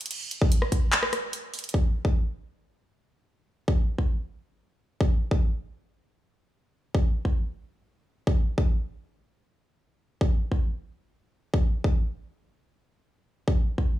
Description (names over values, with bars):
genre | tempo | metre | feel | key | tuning
future bass | 147 BPM | 4/4 | half-time | none | none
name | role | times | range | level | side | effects
trap drum kit | drums | 0.0-1.8 s | crash cymbal, handclaps, hi-hat, rim click | -27 LUFS | equal | low-pass filter on snare, low-pass filter on hats, low-pass filter on cymbals
electronic kick drum | drums | 0.4-13.9 s | none | -23 LUFS | equal | overdrive
room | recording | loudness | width
little or no reverb | studio reverb | -24 LUFS | side -14 dB against mid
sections
0.0-1.7 A section; 1.7-14.0 B section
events
drop 0.0-1.7; break 1.3-1.7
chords
none